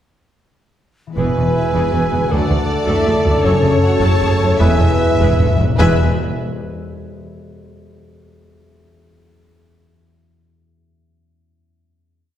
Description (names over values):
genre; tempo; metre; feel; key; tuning
cinematic, heroic adventure film score; 105 BPM (dotted quarters); 6/8; straight; E mixolydian; A4 = 440 Hz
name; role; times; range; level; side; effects
concert harp; arpeggios; 1.1-6.0 s; E2 to E5; -25 LUFS; left 2 dB; none
rich symphonic violin section; melody; 1.2-6.0 s; B4 to E5; -24 LUFS; left 2 dB; none
clear studio violin section; second line; 1.2-6.0 s; B4 to A5; -28 LUFS; left 2 dB; none
mellow cor anglais; second line; 1.2-5.9 s; C#5 to E5; -29 LUFS; right 1 dB; none
silver concert flute; second line; 1.2-6.0 s; G#5 to A5; -27 LUFS; left 1 dB; none
warm clarinet; second line; 1.2-6.0 s; A4 to B4; -26 LUFS; left 2 dB; none
rich symphonic viola section; accompaniment; 1.2-6.0 s; E3 to B4; -26 LUFS; equal; none
clear trombone section; sustained chords; 1.2-5.9 s; B2 to A3; -25 LUFS; right 2 dB; none
dark French horn section; sustained chords; 1.2-5.9 s; B3 to A4; -25 LUFS; left 2 dB; none
mellow trumpet; stabs; 1.2-5.9 s; A4 to B4; -23 LUFS; right 3 dB; none
rich symphonic cello section; bass; 1.2-6.0 s; D2 to F#2; -20 LUFS; right 1 dB; none
rich symphonic double bass section; bass; 1.2-6.0 s; E1 to D2; -20 LUFS; right 1 dB; none
timpani; percussion; 4.6-6.0 s; E2; -21 LUFS; left 1 dB; none
room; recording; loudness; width
wet scoring stage reverb, RT60 1.8 s; heard from further back in the room; -13 LUFS; side -10 dB against mid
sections
1.2-5.8 theme; 5.8-6.9 final chord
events
timpani fill 4.6-5.8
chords
1.2 E; 2.3 D; 3.4 F#m; 4.6 E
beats
| 1.18 1.75 | 2.31 2.88 | 3.44 4.02 | 4.61 5.20 | 5.80